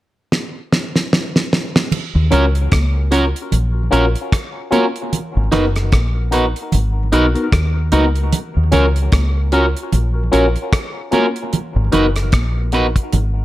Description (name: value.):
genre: lovers rock reggae.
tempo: 75 BPM.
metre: 4/4.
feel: swing 57% on 16ths.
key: Eb minor.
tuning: A4 = 440 Hz.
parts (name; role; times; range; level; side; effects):
damped 70s drum kit; drums; 0.3-13.3 s; crash cymbal, hi-hat, kick drum, rim click, snare drum; -18 LUFS; equal; gated reverb.
congas; percussion; 1.9-13.3 s; none; -23 LUFS; right 3 dB; dub echo.
deep dub fingered electric bass; bass; 2.2-13.4 s; Gb1 to Eb2; -16 LUFS; equal; none.
barky tine electric piano; accompaniment; 2.3-12.9 s; Cb4 to Bb4; -21 LUFS; left 3 dB; phaser, dub echo.
electric guitar at the edge of break-up; stabs; 2.3-12.9 s; Db4 to Cb5; -18 LUFS; right 3 dB; none.
room: small room ambience.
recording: none.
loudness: -14 LUFS.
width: side -15 dB against mid.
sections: 0.0-1.9 A section; 1.9-13.4 B section.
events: drum fill 0.3-1.9.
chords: 0.0 N.C.; 1.9 Ebm7 (rootless); 5.1 Abm7; 8.3 Ebm7 (rootless); 11.5 Abm7.